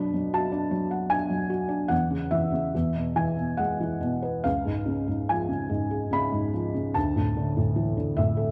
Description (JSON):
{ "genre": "classical, lyrical solo piano", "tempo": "69-79 BPM", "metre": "3/4", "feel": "rubato", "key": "unclear", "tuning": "A4 = 440 Hz", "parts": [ { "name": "felt-muted upright piano", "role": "solo", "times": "0.0-8.5 s", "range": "C#2 to B5", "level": "-27 LUFS", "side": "equal", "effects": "none" } ], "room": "moderate recital hall reverb, RT60 1.7 s", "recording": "dark, warm production", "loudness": "-27 LUFS", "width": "mono", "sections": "0.0-8.5 A section", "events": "none", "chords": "0.0 Bm; 1.9 C#madd11/E; 2.7 E; 4.5 C#; 7.0 Dsus2", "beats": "0.34 1.11 | 1.91 2.74 3.60 | 4.46 5.30 6.13 | 6.96 7.77" }